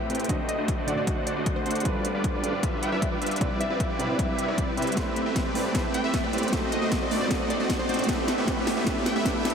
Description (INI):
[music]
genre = future bass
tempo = 154 BPM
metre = 4/4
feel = half-time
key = unclear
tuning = A4 = 440 Hz
[part]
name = dark grand piano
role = accompaniment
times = 0.0-9.5 s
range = C3 to F#5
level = -32 LUFS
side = right 2 dB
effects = sidechain pumping, tape echo
[part]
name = ethereal airy pad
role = sustained chords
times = 0.0-9.5 s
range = C4 to D6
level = -37 LUFS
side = equal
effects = none
[part]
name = supersaw chords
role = riff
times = 0.0-9.5 s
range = G3 to G5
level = -28 LUFS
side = equal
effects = sidechain pumping, low-pass filter, tape echo
[part]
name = long sustained 808-style bass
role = bass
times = 0.0-9.5 s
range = none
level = barely audible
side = none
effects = none
[part]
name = riser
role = sound effects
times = 0.0-9.5 s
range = none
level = -38 LUFS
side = right 1 dB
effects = none
[part]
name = trap drum kit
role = drums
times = 0.1-9.5 s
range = hi-hat, snare drum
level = -31 LUFS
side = equal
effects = none
[part]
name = electronic kick drum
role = drums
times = 0.3-9.3 s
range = none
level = -30 LUFS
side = equal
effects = overdrive
[part]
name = plucky unison lead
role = melody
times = 0.5-9.3 s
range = C5 to G5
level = -34 LUFS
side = equal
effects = sidechain pumping, tape echo
[sound]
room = wet huge ambient reverb, RT60 8.6 s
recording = dreamy mix soaked in reverb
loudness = -24 LUFS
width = side -6 dB against mid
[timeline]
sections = 0.0-9.5 A section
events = build-up 0.0-9.5; drum fill 5.0-9.5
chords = 0.3 D7b9; 1.9 G7; 3.4 Cmaj9; 5.0 Am9; 6.5 D7b9; 8.1 G